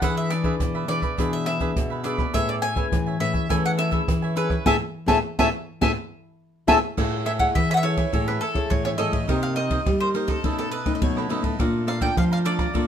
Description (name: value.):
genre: samba and choro.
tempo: 104 BPM.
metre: 4/4.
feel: straight.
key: A major.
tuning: A4 = 440 Hz.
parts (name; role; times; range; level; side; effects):
mandolin; melody; 0.0-12.9 s; A4 to A5; -26 LUFS; left 1 dB; none.
cavaquinho; accompaniment; 0.0-12.9 s; D4 to Bb5; -30 LUFS; right 6 dB; none.
nylon-string guitar; accompaniment; 0.0-12.9 s; Bb2 to C#5; -28 LUFS; left 5 dB; none.
nylon-string guitar; bass; 0.0-12.9 s; A2 to G3; -27 LUFS; equal; none.
open jazz drum kit; drums; 0.0-12.9 s; crash cymbal, hi-hat, kick drum, ride cymbal, rim click, snare drum; -26 LUFS; right 1 dB; none.
room: moderate studio reverb, RT60 0.6 s.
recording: minimal, uncompressed stereo recording.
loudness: -21 LUFS.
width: side -9 dB against mid.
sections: 0.0-7.0 A section; 7.0-12.9 B section.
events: band accent 4.7-7.0.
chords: 0.0 E7; 2.3 Amaj9; 7.0 Amaj7; 9.3 Cm7; 10.4 B9; 11.6 Bbmaj7.